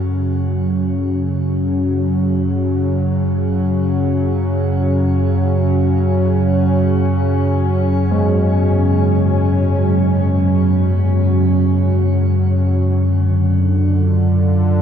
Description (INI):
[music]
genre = dark ambient drone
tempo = free time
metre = none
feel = none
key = unclear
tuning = A4 = 441 Hz
[part]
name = sweeping resonant pad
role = sustained chords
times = 0.0-14.8 s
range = C#3 to F4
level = -18 LUFS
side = right 1 dB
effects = chorus, shimmer reverb
[part]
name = carillon bells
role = arpeggios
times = 0.0-14.6 s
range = G#3 to F#4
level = -26 LUFS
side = left 2 dB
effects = ping-pong delay, shimmer reverb
[part]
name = deep rumbling drone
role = drone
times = 0.0-14.8 s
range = F#2 to F#3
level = -16 LUFS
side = equal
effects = built-in reverb
[sound]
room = wet cathedral reverb, RT60 6.6 s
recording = dark, warm production, faint mains hum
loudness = -14 LUFS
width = side -8 dB against mid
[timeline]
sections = 0.0-14.8 A section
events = none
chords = 0.0 F#5; 13.0 Dm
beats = free time